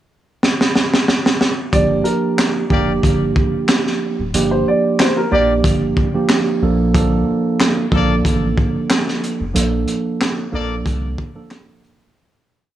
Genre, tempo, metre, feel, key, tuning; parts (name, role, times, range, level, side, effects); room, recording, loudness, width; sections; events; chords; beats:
hip hop, boom-bap hip-hop; 92 BPM; 4/4; swing 55% on 16ths; G minor; A4 = 440 Hz
crunchy breakbeat drum kit; drums; 0.4-12.0 s; handclaps, hi-hat, kick drum, snare drum; -17 LUFS; equal
dark upright piano; melody; 1.7-5.8 s; Bb4 to D5; -19 LUFS; equal; high-pass filter, low-pass filter, tape echo
mellow tine electric piano; accompaniment; 1.7-12.1 s; F3 to A4; -18 LUFS; right 4 dB; cassette tape, high-pass filter, low-pass filter
warm sub bass; bass; 1.7-11.2 s; D1 to C2; -21 LUFS; equal
warm trumpet section; stabs; 2.7-10.7 s; Bb3 to D5; -26 LUFS; left 5 dB; high-pass filter, low-pass filter, tape echo
light reverb, small room ambience; -14 LUFS; side -12 dB against mid
0.0-1.7 pickup bar; 1.7-12.2 verse
drum fill 0.4-1.7; fade-out 9.6-12.2
0.0 N.C.; 1.7 Gm7; 6.6 Bbmaj7
0.42 1.08 | 1.73 2.38 3.03 3.69 | 4.34 4.99 5.64 6.29 | 6.95 7.60 8.25 8.90 | 9.56 10.21 10.86 11.51